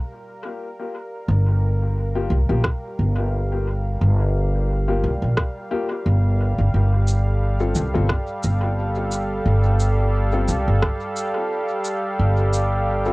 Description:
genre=ambient dub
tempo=88 BPM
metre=4/4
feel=swing 56% on 16ths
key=G minor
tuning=A4 = 439 Hz
part: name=warm analog pad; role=sustained chords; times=0.0-13.1 s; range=G3 to F5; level=-26 LUFS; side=right 1 dB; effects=chorus, cassette tape
part: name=upright bass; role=bass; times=1.3-13.1 s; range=G1 to C2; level=-19 LUFS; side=equal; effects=none
part: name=dark upright piano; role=stabs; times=2.2-13.1 s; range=Bb3 to A4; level=-28 LUFS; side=left 4 dB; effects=cassette tape, dub echo
part: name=electronic kick drum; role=drums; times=2.6-11.0 s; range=none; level=-25 LUFS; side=equal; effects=cassette tape
part: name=electronic rim click and cabasa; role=drums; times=2.6-12.7 s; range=none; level=-28 LUFS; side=equal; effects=cassette tape, dub echo
room=little or no reverb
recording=home recording on cassette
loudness=-18 LUFS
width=side -23 dB against mid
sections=0.0-13.1 A section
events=fade-in on analog synth pad 0.0-13.1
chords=0.0 Gm7; 6.7 F/G

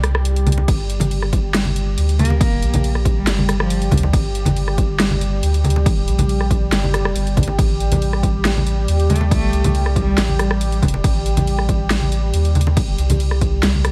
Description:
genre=deep dubstep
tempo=139 BPM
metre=4/4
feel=half-time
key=G minor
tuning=A4 = 442 Hz
part: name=deep dark ambient pad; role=sustained chords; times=0.0-13.9 s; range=G3 to G4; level=-28 LUFS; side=equal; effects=chorus, built-in reverb
part: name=soft dub sub bass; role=bass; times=0.0-13.9 s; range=Eb1 to Eb2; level=-21 LUFS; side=equal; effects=none
part: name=dubstep drum kit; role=drums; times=0.0-13.9 s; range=crash cymbal, hi-hat, rim click, snare drum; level=-26 LUFS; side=equal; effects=none
part: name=congas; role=percussion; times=0.5-13.8 s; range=none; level=-24 LUFS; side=equal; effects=none
part: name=electronic kick drum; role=drums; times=0.7-13.5 s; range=none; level=-21 LUFS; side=equal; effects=overdrive
part: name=rich cello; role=melody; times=2.2-3.9, 9.1-10.4 s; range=F3 to Bb3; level=-28 LUFS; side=equal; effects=dub echo
room=little or no reverb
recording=vinyl crackle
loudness=-18 LUFS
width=mono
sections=0.0-13.9 A section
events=kick drops out 0.2-0.7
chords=0.0 N.C.; 0.7 Gm; 7.6 Adim

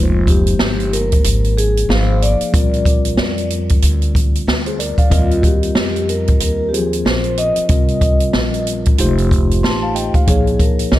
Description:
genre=hip hop, jazz-hop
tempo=93 BPM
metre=4/4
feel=swing 60% on 16ths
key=F minor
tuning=A4 = 442 Hz
part: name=vibraphone with soft mallets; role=melody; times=0.0-11.0 s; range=F4 to Eb5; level=-20 LUFS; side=left 1 dB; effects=none
part: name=mellow tine electric piano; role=accompaniment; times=0.0-11.0 s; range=F3 to C6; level=-21 LUFS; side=left 1 dB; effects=fast stereo tremolo
part: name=upright bass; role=bass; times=0.0-11.0 s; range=F1 to F2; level=-19 LUFS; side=equal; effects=none
part: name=open jazz drum kit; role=drums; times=0.3-11.0 s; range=hi-hat, kick drum, snare drum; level=-16 LUFS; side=equal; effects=none
room=light reverb, small room ambience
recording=none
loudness=-13 LUFS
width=side -14 dB against mid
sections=0.0-11.0 A section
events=none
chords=0.0 Fm9; 2.5 Bb; 5.1 Eb69; 7.7 Cm7; 9.0 F7; 10.3 Bbm7

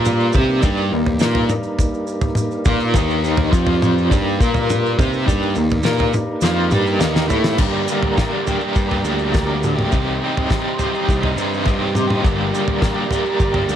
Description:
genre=psychedelic rock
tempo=103 BPM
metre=4/4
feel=straight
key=G minor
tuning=A4 = 441 Hz
part: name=mellow tonewheel organ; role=sustained chords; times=0.0-13.8 s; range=Bb3 to C6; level=-26 LUFS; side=right 3 dB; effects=slow rotary speaker, chorus vibrato
part: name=overdriven electric guitar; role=riff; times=0.0-13.8 s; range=G2 to C5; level=-19 LUFS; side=equal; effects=tremolo
part: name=fuzz picked electric bass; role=bass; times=0.0-13.8 s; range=G1 to C3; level=-22 LUFS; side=equal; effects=overdrive
part: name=pedal harmonium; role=drone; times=0.0-7.7 s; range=G2 to G3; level=-28 LUFS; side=left 2 dB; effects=none
part: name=damped 70s drum kit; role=drums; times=0.1-13.7 s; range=crash cymbal, kick drum, snare drum, toms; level=-20 LUFS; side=equal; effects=none
part: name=maracas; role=percussion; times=0.1-13.8 s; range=none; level=-37 LUFS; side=right 7 dB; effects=none
room=moderate spring reverb, RT60 2.4 s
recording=none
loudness=-16 LUFS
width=side -10 dB against mid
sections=0.0-7.6 A section; 7.6-13.8 B section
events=drum fill 6.4-7.6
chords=0.3 Eb5; 3.5 F5; 4.1 Eb5; 4.4 Bb5; 5.0 Eb5; 7.6 Gm; 9.9 Cm; 12.2 Gm

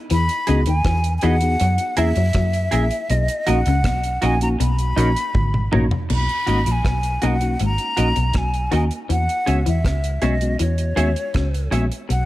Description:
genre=lovers rock reggae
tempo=80 BPM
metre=4/4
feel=straight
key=B major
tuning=A4 = 438 Hz
part: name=breathy concert flute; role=melody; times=0.1-12.3 s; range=C#5 to B5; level=-24 LUFS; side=left 1 dB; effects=tape echo
part: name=electric guitar through a small old amp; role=riff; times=0.1-12.2 s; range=G#2 to F#3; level=-29 LUFS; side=left 6 dB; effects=phaser
part: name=vintage muted fingered electric bass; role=bass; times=0.1-12.3 s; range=G#1 to F#2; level=-20 LUFS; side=equal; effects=none
part: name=deep reggae drum kit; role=drums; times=0.1-12.3 s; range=crash cymbal, hi-hat, kick drum, rim click, toms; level=-25 LUFS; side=equal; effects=tape echo
part: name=mellow tine electric piano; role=accompaniment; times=0.5-11.9 s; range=G#3 to G#4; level=-26 LUFS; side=left 1 dB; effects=tape echo
part: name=semi-hollow electric guitar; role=stabs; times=0.5-11.8 s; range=D#4 to E5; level=-27 LUFS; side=right 3 dB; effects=lush chorus
room=light reverb, small room ambience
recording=none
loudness=-17 LUFS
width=side -16 dB against mid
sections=0.0-6.1 A section; 6.1-12.3 B section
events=drum fill 5.3-6.1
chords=0.1 Emaj7; 1.6 F#9; 3.1 Bmaj7; 4.6 Bmaj9; 9.1 E6

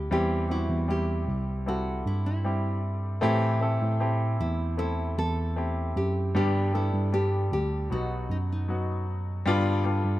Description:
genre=pop ballad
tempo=77 BPM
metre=4/4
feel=straight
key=unclear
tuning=A4 = 440 Hz
part: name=nylon-string guitar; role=melody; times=0.0-9.1 s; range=D#4 to A4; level=-33 LUFS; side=equal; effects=none
part: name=bright concert grand piano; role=accompaniment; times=0.0-10.2 s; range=G2 to A4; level=-30 LUFS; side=left 2 dB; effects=none
part: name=tine electric piano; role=bass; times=0.0-10.2 s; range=B1 to A2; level=-27 LUFS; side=right 1 dB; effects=none
room=studio reverb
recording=rough home demo mix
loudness=-25 LUFS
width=side -15 dB against mid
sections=0.0-10.2 A section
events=none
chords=0.1 C; 3.2 Am7; 6.3 G; 7.9 B; 9.5 G7

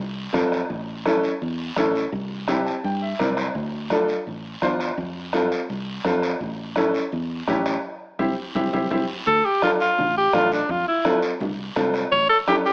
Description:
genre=latin, cumbia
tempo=168 BPM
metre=4/4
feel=straight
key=D minor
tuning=A4 = 443 Hz
part: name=fingered electric bass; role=bass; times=0.0-12.3 s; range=A1 to G2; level=-30 LUFS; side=equal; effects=none
part: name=clear upright piano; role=accompaniment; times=0.3-12.7 s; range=C4 to A5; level=-23 LUFS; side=equal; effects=none
part: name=bombo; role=percussion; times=0.3-12.7 s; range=none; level=-29 LUFS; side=equal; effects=none
part: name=congas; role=percussion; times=0.3-12.7 s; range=none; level=-32 LUFS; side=equal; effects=none
part: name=guiro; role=percussion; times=0.3-12.7 s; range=none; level=-35 LUFS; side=right 1 dB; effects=none
part: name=bright alto saxophone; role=melody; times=9.3-12.7 s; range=D4 to C#5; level=-18 LUFS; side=equal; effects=none
room=moderate large studio reverb, RT60 0.9 s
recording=AM radio sound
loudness=-20 LUFS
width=side -33 dB against mid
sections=0.0-9.3 A section; 9.3-12.7 B section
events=upright piano fill 2.5-3.6; band accent 7.8-9.3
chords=0.0 F; 0.7 A; 2.1 C; 3.6 Dm; 5.0 F; 6.4 A7; 7.8 C; 9.3 Dm; 10.7 F; 12.1 A7

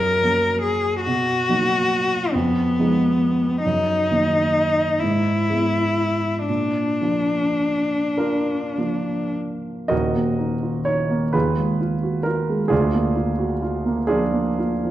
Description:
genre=classical, romantic duo for cello and grand piano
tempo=33-49 BPM (dotted quarters)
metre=6/8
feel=rubato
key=Eb minor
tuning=A4 = 440 Hz
part: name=rich cello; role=melody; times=0.0-9.3 s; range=Cb4 to Bb4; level=-20 LUFS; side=left 2 dB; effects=none
part: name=warm grand piano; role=accompaniment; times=0.0-14.9 s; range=Eb1 to Eb5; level=-21 LUFS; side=right 2 dB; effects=none
room=wet recital hall reverb, RT60 1.6 s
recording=dark, warm production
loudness=-19 LUFS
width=side -13 dB against mid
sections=0.0-9.9 A section; 9.9-14.9 B section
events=none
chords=0.0 Gb; 1.0 Bmaj7; 2.3 Fm7b5; 3.6 Ebm/Gb; 5.0 E/G#; 6.5 Bb; 9.9 Ebm; 11.3 Fm7b5/Eb; 12.7 Bb7/D

